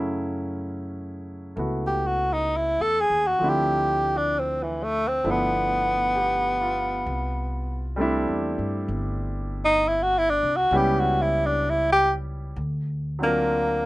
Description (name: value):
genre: jazz ballad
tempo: 66 BPM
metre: 4/4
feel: swing 69% on 8ths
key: unclear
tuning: A4 = 440 Hz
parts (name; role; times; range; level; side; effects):
- warm grand piano; accompaniment; 0.0-13.9 s; C#3 to A#4; -29 LUFS; equal; none
- upright bass; bass; 0.0-13.9 s; G1 to G2; -30 LUFS; equal; none
- breathy tenor saxophone; melody; 1.9-13.9 s; E3 to A4; -22 LUFS; equal; none
room: light reverb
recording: rough home demo mix, nothing above 10.8 kHz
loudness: -22 LUFS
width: side -18 dB against mid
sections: 0.0-13.9 A section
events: tenor saxophone solo 0.0-13.9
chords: 0.0 F#m7; 3.4 Dm7; 5.2 G13; 7.1 C69; 10.7 C#m7b5; 12.6 D7alt